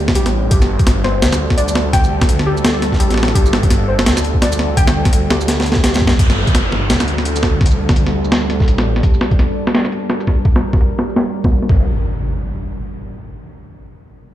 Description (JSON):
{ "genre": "half-time drum and bass", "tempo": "169 BPM", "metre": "4/4", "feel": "swing 58% on 16ths, half-time", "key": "G minor", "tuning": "A4 = 439 Hz", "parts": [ { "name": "deep dark ambient pad", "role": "sustained chords", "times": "0.0-11.9 s", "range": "G3 to Bb4", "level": "-23 LUFS", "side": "equal", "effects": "chorus, built-in reverb, sidechain pumping" }, { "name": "phased detuned saw bass", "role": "bass", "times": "0.0-9.0, 11.7-11.9 s", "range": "G1 to G2", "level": "-18 LUFS", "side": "equal", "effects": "phaser" }, { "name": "boom bap sampler-style drum kit", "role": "drums", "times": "0.1-11.7 s", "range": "hi-hat, shaker, snare drum", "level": "-18 LUFS", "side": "equal", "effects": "overdrive, low-pass filter on hats, low-pass filter on snare, low-pass filter on perc, low-pass filter on room" }, { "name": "electronic kick drum", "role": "drums", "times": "0.1-11.8 s", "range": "none", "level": "-14 LUFS", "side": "equal", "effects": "overdrive" }, { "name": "warbly dusty pluck", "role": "arpeggios", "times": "0.2-6.0 s", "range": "G4 to G5", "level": "-23 LUFS", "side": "left 2 dB", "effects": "chorus, digital delay" }, { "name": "downlifter and impact", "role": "sound effects", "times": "6.2-9.0, 11.7-13.1 s", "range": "none", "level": "-23 LUFS", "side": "equal", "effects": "none" } ], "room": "little or no reverb", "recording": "played on a big sound system in a bare room, large studio reverb", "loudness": "-12 LUFS", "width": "side -12 dB against mid", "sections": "0.0-6.2 A section; 6.2-11.9 B section; 11.9-13.3 C section", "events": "drop 0.0-6.2; drum fill 5.5-6.2; filter sweep on drum 6.2-11.9", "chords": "0.0 G5; 11.9 N.C." }